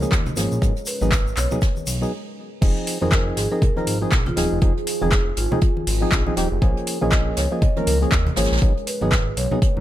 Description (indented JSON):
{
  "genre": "deep house",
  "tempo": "120 BPM",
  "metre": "4/4",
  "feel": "swing 59% on 16ths",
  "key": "F minor",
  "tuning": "A4 = 438 Hz",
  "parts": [
    { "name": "marimba with medium mallets", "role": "melody", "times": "0.0-9.8 s", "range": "F4 to Eb5", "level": "-29 LUFS", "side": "equal", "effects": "dub echo" },
    { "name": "deep dark ambient pad", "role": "sustained chords", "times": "0.0-9.8 s", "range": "F3 to Cb5", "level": "-33 LUFS", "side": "right 2 dB", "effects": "none" },
    { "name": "percussive organ stab", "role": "stabs", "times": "0.0-9.6 s", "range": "F3 to Bb4", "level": "-25 LUFS", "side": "equal", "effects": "chorus, sidechain pumping" },
    { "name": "smooth synth bass", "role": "bass", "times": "0.0-9.8 s", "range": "Eb1 to Ab2", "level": "-24 LUFS", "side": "equal", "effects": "tube saturation, sidechain pumping" },
    { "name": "jazz brush drum kit", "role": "drums", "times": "0.0-9.8 s", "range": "hi-hat, snare drum", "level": "-32 LUFS", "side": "right 2 dB", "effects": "sidechain pumping on hats, high-pass filter on hats, high-pass filter on snare, high-pass filter on room" },
    { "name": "egg shaker", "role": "percussion", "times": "0.0-2.1 s", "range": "none", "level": "-34 LUFS", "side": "left 3 dB", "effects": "none" },
    { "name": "deep house drum kit", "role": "drums", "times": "0.1-9.5 s", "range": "crash cymbal, handclaps, hi-hat", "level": "-27 LUFS", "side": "left 1 dB", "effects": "overdrive" },
    { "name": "electronic kick drum", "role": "drums", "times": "0.1-9.7 s", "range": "none", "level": "-19 LUFS", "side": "equal", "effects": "overdrive" },
    { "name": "congas", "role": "percussion", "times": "0.3-9.8 s", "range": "none", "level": "-30 LUFS", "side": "left 1 dB", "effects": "none" }
  ],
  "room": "studio ambience",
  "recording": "none",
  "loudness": "-18 LUFS",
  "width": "side -13 dB against mid",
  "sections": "0.0-2.6 A section; 2.6-9.8 B section",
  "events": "stop 2.1-2.6; drop 2.6-9.8",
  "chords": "0.0 Bbm7; 0.6 Abm7; 2.6 Fm7; 6.6 Bbm7; 8.6 Abm7"
}